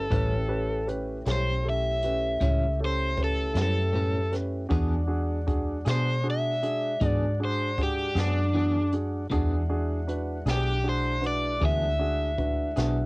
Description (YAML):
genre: slow blues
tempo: 52 BPM (dotted quarters)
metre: 12/8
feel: straight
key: unclear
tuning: A4 = 440 Hz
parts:
  - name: crunchy overdriven guitar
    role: melody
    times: 0.0-13.1 s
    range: D4 to E5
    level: -28 LUFS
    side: equal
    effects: cassette tape
  - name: dark concert grand piano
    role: accompaniment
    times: 0.0-13.1 s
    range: C#4 to C#5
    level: -32 LUFS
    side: right 1 dB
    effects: none
  - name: tonewheel organ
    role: sustained chords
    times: 0.0-13.1 s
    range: G#3 to F#5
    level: -38 LUFS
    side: equal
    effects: slow rotary speaker
  - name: vintage muted fingered electric bass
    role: bass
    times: 0.0-13.1 s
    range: A1 to B2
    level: -28 LUFS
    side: equal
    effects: none
  - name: electric guitar at the edge of break-up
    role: accompaniment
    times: 0.1-13.0 s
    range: A2 to G#4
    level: -33 LUFS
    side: left 1 dB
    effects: tremolo
  - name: jazz brush drum kit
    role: drums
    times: 0.1-13.0 s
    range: hi-hat, kick drum, snare drum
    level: -31 LUFS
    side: equal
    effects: cassette tape
room: little or no reverb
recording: home recording on cassette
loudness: -24 LUFS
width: side -25 dB against mid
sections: 0.0-13.1 A section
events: overdriven electric guitar solo 0.0-13.1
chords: 0.0 A7; 4.7 E7